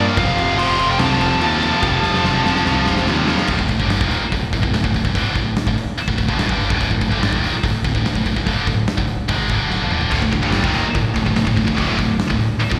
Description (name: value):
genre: heavy metal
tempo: 145 BPM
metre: 4/4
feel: straight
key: D phrygian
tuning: A4 = 440 Hz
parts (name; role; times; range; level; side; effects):
- high-gain lead guitar; melody; 0.0-3.0 s; F5 to C6; -23 LUFS; equal; distortion, digital delay
- heavy high-gain guitar; riff; 0.0-12.8 s; D2 to Bb3; -23 LUFS; equal; distortion
- heavy high-gain guitar; riff; 0.0-3.5, 10.1-12.8 s; D2 to Bb3; -23 LUFS; equal; distortion, slapback echo
- growling picked electric bass; bass; 0.0-12.8 s; D1 to Eb2; -25 LUFS; equal; overdrive
- big rock drum kit; drums; 0.2-12.8 s; crash cymbal, hi-hat, kick drum, snare drum, toms; -24 LUFS; equal; none
room: small room ambience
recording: live gig heard through the venue's PA, recital hall reverb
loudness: -18 LUFS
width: mono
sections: 0.0-3.5 A section; 3.5-12.8 B section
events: half time 0.0-3.5; drum fill 1.8-3.5, 9.7-10.1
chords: 0.2 F; 3.5 D5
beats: | 0.17 0.59 1.00 1.42 | 1.83 2.24 2.66 3.07 | 3.49 3.90 4.32 4.73 | 5.14 5.56 5.97 6.39 | 6.80 7.22 7.63 8.05 | 8.46 8.88 9.29 9.71 | 10.12 10.54 10.95 11.36 | 11.78 12.19 12.61